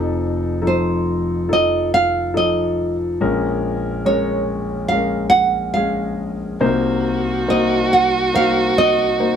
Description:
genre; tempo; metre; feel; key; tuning
acoustic folk-pop ballad; 70 BPM; 4/4; straight; Bb minor; A4 = 439 Hz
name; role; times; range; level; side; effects
dark concert grand piano; accompaniment; 0.0-9.4 s; F1 to C5; -19 LUFS; left 2 dB; none
nylon-string guitar; melody; 0.7-9.4 s; C5 to Gb5; -18 LUFS; right 3 dB; none
dark violin; second line; 6.6-9.4 s; Gb4; -19 LUFS; right 2 dB; none
room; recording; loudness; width
light reverb; none; -16 LUFS; side -8 dB against mid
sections
0.0-9.4 A section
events
none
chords
0.0 F7; 3.2 Bbm7; 6.6 Cm7b5

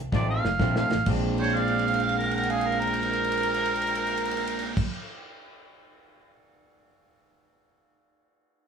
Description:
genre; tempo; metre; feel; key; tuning
electric blues shuffle; 127 BPM; 4/4; swing 66% on 8ths; Bb mixolydian; A4 = 440 Hz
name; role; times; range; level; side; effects
upright bass; bass; 0.0-4.8 s; F1 to Bb1; -31 LUFS; equal; none
electric guitar through a small old amp; riff; 0.1-4.8 s; F2 to D4; -30 LUFS; equal; none
warm soul drum kit; drums; 0.1-6.3 s; crash cymbal, kick drum, ride cymbal, snare drum; -31 LUFS; right 1 dB; none
mellow harmonica; melody; 0.2-4.8 s; Ab4 to F5; -27 LUFS; right 3 dB; overdrive
mellow harmonica; second line; 1.4-4.8 s; Bb4 to G5; -30 LUFS; right 2 dB; overdrive
room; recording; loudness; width
moderate studio reverb, RT60 0.8 s; band playing live in one room, studio ambience; -23 LUFS; side -6 dB against mid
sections
0.0-1.1 A section; 1.1-4.8 B section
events
drum fill 0.1-1.1, 1.3-4.7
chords
0.0 F7; 1.1 Bb9

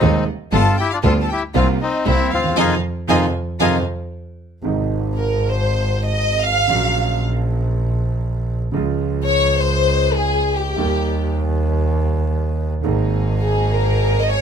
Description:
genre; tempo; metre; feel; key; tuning
tango; 117 BPM; 4/4; rubato; F minor, Ab major from 4.6 s; A4 = 440 Hz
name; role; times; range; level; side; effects
bandoneon; melody; 0.0-3.8 s; C4 to A4; -20 LUFS; left 5 dB; none
dark chamber violin section; second line; 0.0-14.4 s; G4 to A5; -20 LUFS; left 1 dB; none
clear concert grand piano; accompaniment; 0.0-14.4 s; Eb1 to Ab4; -24 LUFS; right 4 dB; none
bright chamber string section; stabs; 0.0-3.8, 12.8-14.4 s; G3 to Ab4; -28 LUFS; left 2 dB; none
clear double bass; bass; 0.0-14.4 s; G1 to F2; -19 LUFS; right 1 dB; none
room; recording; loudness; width
little or no reverb; close, detailed microphones; -16 LUFS; side -7 dB against mid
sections
0.0-4.6 A section; 4.6-14.4 B section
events
band accent 2.6-4.6; violin section solo 4.6-14.4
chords
0.0 Ab; 0.5 G7; 1.5 C7sus4; 2.1 C7; 2.6 Fm7; 4.6 Ab; 6.7 Gb/Bb; 8.7 Db; 10.8 Eb; 12.8 Absus2

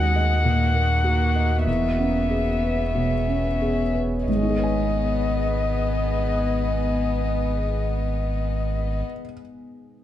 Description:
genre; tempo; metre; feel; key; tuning
neoclassical piano and strings; 46 BPM; 4/4; rubato; G# minor; A4 = 440 Hz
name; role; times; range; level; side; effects
dark violin; melody; 0.0-9.0 s; D#5 to F#5; -26 LUFS; left 5 dB; none
rich cello; second line; 0.0-9.0 s; G#3 to B3; -31 LUFS; right 3 dB; none
felt-muted upright piano; accompaniment; 0.0-10.0 s; D#2 to G#5; -26 LUFS; right 1 dB; none
deep dark ambient pad; sustained chords; 0.0-9.1 s; A#3 to D#5; -32 LUFS; left 3 dB; chorus, built-in reverb
sub bass with octave; bass; 0.0-9.0 s; E1 to D#2; -24 LUFS; equal; none
room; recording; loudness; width
light reverb; dark, warm production; -20 LUFS; side -12 dB against mid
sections
0.0-4.3 A section; 4.3-9.5 B section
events
slowing down 0.0-4.3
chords
0.0 D#m; 1.7 C#m7/E; 4.3 G#m

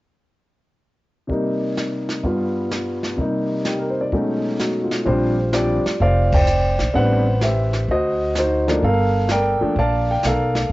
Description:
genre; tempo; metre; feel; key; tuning
jazz piano trio; 128 BPM; 4/4; swing 69% on 8ths; unclear; A4 = 440 Hz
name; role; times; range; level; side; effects
warm baby grand piano; melody; 1.3-10.7 s; G2 to A5; -19 LUFS; equal; cassette tape
jazz brush drum kit; drums; 1.3-10.7 s; brushed snare drum, hi-hat, kick drum, ride cymbal, snare drum; -25 LUFS; equal; none
upright bass; bass; 5.1-10.7 s; F1 to D2; -20 LUFS; equal; none
room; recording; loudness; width
moderate studio reverb, RT60 0.6 s; home recording on cassette, nothing above 7.7 kHz; -17 LUFS; side -18 dB against mid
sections
1.3-5.1 A section; 5.1-10.7 B section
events
band accent 6.2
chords
1.3 Cm7; 2.2 G7; 3.2 Cm7; 4.1 B13; 5.1 Bb69; 6.9 Am11; 7.9 D7b9; 8.8 Gm9

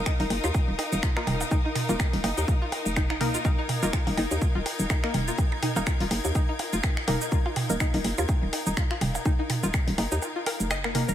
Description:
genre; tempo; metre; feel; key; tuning
minimal techno; 124 BPM; 4/4; swing 56% on 16ths; unclear; A4 = 440 Hz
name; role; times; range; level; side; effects
hollow knocking FM bass; bass; 0.0-11.1 s; Eb1 to Eb2; -28 LUFS; equal; tube saturation, sidechain pumping
clear studio string section; texture; 0.0-11.1 s; Eb4 to Ab6; -34 LUFS; left 2 dB; sidechain pumping
string-like resonator pluck; riff; 0.1-11.1 s; Bb3 to Eb5; -34 LUFS; left 1 dB; analog chorus, sidechain pumping, analog delay
electronic kick drum; drums; 0.1-9.8 s; none; -25 LUFS; equal; none
house drum kit; drums; 0.1-11.1 s; cabasa, finger snaps, hi-hat; -32 LUFS; left 1 dB; none
electronic percussion blips and toms; percussion; 0.1-11.1 s; none; -33 LUFS; right 2 dB; overdrive, ping-pong delay
filtered dub chord stab; stabs; 1.2-7.8, 10.9-11.0 s; Bb3 to Bb4; -34 LUFS; left 1 dB; chorus, ping-pong delay
room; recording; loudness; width
light reverb; none; -24 LUFS; side -11 dB against mid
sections
0.0-11.1 A section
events
kick drops out 10.2-11.1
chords
0.0 Eb5

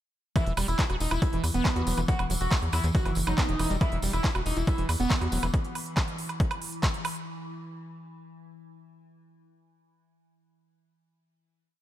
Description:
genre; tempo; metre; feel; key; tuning
psychedelic trance; 139 BPM; 4/4; straight; unclear; A4 = 439 Hz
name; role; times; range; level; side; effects
overdriven synth lead; melody; 0.4-5.5 s; B3 to F#4; -33 LUFS; right 2 dB; phaser, sidechain pumping, ping-pong delay
evolving wavetable pad; sustained chords; 1.0-7.3 s; E3; -39 LUFS; equal; chorus, built-in reverb, phaser, vintage 12-bit sampler grit, sidechain pumping
screaming distorted acid line; riff; 0.4-5.5 s; E3 to F#4; -35 LUFS; equal; distortion, chorus, auto-pan, sidechain pumping, digital delay
big-room dance drum kit; drums; 0.4-7.2 s; handclaps, hi-hat, woodblock; -33 LUFS; right 2 dB; overdrive
electronic kick drum; drums; 0.4-6.9 s; none; -26 LUFS; equal; overdrive
tambourine; percussion; 0.4-5.5 s; none; -41 LUFS; left 2 dB; none
tight sequencer bass; bass; 0.5-5.5 s; E1 to E2; -29 LUFS; equal; none
room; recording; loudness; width
digital ambience; none; -25 LUFS; side -13 dB against mid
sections
0.4-7.3 drop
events
drop 0.4-7.3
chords
0.4 E5

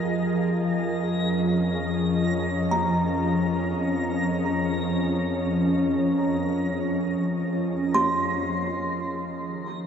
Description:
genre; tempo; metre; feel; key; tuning
ambient; free time; none; none; unclear; A4 = 440 Hz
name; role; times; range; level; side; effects
glassy FM pad; sustained chords; 0.0-9.9 s; Eb3 to F5; -24 LUFS; equal; ensemble chorus, built-in reverb, shimmer reverb
organ-like drone; drone; 0.0-9.9 s; F3 to F4; -42 LUFS; right 1 dB; none
backwards swelling texture; texture; 0.0-9.3 s; Bb6; -35 LUFS; equal; built-in reverb, shimmer reverb
dark studio cello section; bass; 0.1-9.2 s; F2; -30 LUFS; left 1 dB; none
kalimba; arpeggios; 2.7-9.8 s; Bb5 to C6; -29 LUFS; right 1 dB; diffuse ambient delay, shimmer reverb
room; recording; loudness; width
wet huge ambient reverb, RT60 8.6 s; worn, warbling old tape, cassette tape, warbly pitch drift; -22 LUFS; side -7 dB against mid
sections
0.0-9.3 A section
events
none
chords
0.1 Eb9sus4/F; 9.3 Eb7(no3)

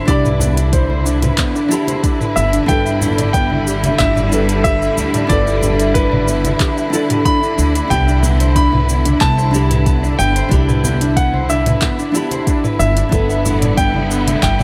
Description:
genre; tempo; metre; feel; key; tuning
sunset chillout; 92 BPM; 4/4; straight; C major; A4 = 440 Hz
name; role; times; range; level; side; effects
clear baby grand piano; melody; 0.0-14.6 s; B4 to B5; -23 LUFS; equal; digital delay
nylon-string guitar; accompaniment; 0.0-14.6 s; D4 to B5; -24 LUFS; equal; digital delay
rich studio string section; sustained chords; 0.0-14.6 s; D3 to E4; -24 LUFS; equal; vintage 12-bit sampler grit
electric guitar at the edge of break-up; arpeggios; 0.0-14.6 s; B3 to E5; -26 LUFS; equal; digital delay
upright bass; bass; 0.1-14.6 s; G1 to D2; -20 LUFS; equal; none
electronic kick drum; drums; 0.1-14.6 s; none; -20 LUFS; equal; overdrive
smooth R&B drum kit; drums; 0.1-14.6 s; cabasa, handclaps, hi-hat, toms; -25 LUFS; equal; overdrive
congas; percussion; 0.4-14.6 s; none; -28 LUFS; equal; none
room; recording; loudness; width
light reverb; none; -15 LUFS; mono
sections
0.0-14.6 A section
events
none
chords
0.0 Cmaj9; 2.7 G6; 7.9 Cmaj9; 13.1 G6

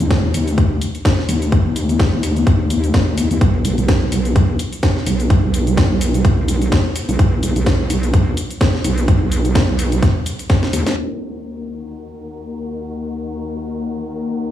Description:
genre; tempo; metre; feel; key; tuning
bass house; 127 BPM; 4/4; swing 56% on 16ths; Eb minor; A4 = 440 Hz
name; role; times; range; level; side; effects
vowel-sweep wobble bass; bass; 0.0-10.8 s; B1 to Eb2; -17 LUFS; equal; chorus, tube saturation, sidechain pumping
house drum kit; drums; 0.0-10.9 s; hi-hat, shaker, snare drum; -23 LUFS; equal; none
electronic kick drum; drums; 0.1-10.6 s; none; -16 LUFS; equal; none
dark studio string section; sustained chords; 11.0-14.5 s; Eb2 to Bb4; -25 LUFS; left 3 dB; sidechain pumping
room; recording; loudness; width
light reverb; played on a big sound system in a bare room, stone room reverb, low-pass filter, studio ambience; -14 LUFS; side -11 dB against mid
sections
0.0-11.0 A section; 11.0-14.5 B section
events
filter sweep on wobble bass 0.0-11.0; drum fill 10.5-11.0; band accent 10.9; filter sweep 11.0-14.5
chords
0.0 N.C.; 11.0 Ebm

